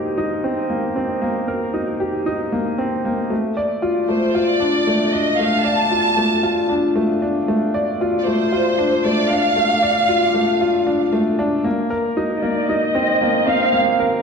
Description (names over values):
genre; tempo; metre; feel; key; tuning
piano and strings electronica; 115 BPM; 4/4; straight; unclear; A4 = 440 Hz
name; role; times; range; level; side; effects
clear upright piano; riff; 0.0-14.2 s; A3 to D5; -18 LUFS; left 1 dB; low-pass filter, ping-pong delay
warm studio violin section; melody; 4.1-13.7 s; C5 to A5; -18 LUFS; right 1 dB; low-pass filter
room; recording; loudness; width
wet recital hall reverb, RT60 1.4 s; dark, warm production; -16 LUFS; side -5 dB against mid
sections
0.0-11.7 A section; 11.7-14.2 B section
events
build-up 11.7-14.2; filter sweep on violin section 11.7-14.2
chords
0.0 Cm7; 3.3 Dm; 11.7 Cm7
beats
0.18 0.70 | 1.22 1.74 2.26 2.79 | 3.31 3.83 4.35 4.87 | 5.39 5.92 6.44 6.96 | 7.48 8.00 8.53 9.05 | 9.57 10.09 10.61 11.13 | 11.65 12.18 12.70 13.22 | 13.74